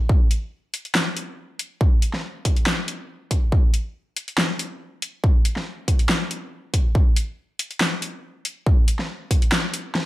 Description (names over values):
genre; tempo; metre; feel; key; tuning
dubstep; 140 BPM; 4/4; half-time; none; none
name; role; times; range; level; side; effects
electronic kick drum; drums; 0.1-9.4 s; none; -18 LUFS; equal; small room ambience
dubstep drum kit; drums; 0.3-10.0 s; handclaps, hi-hat, snare drum; -23 LUFS; left 1 dB; small room ambience
room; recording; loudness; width
light reverb, digital ambience; none; -20 LUFS; side -17 dB against mid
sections
0.0-10.1 A section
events
none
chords
none